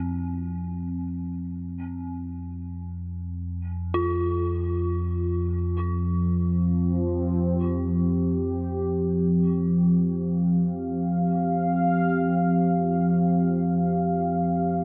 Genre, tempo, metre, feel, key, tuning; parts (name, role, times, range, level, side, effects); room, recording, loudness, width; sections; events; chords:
dark ambient drone; free time; A4 = 440 Hz
dark detuned synth bell; arpeggios; 0.0-14.8 s; C4 to F4; -35 LUFS; equal; chorus, phaser, diffuse ambient delay
deep rumbling drone; drone; 0.0-14.8 s; F2 to F3; -32 LUFS; equal; built-in reverb
sweeping resonant pad; sustained chords; 5.4-14.8 s; F3 to F5; -24 LUFS; equal; chorus
wet huge ambient reverb, RT60 7.7 s; -25 LUFS; mono
0.0-14.8 A section
filter sweep on synth drone 0.0-14.8; fade-out 11.9-14.8
0.0 F5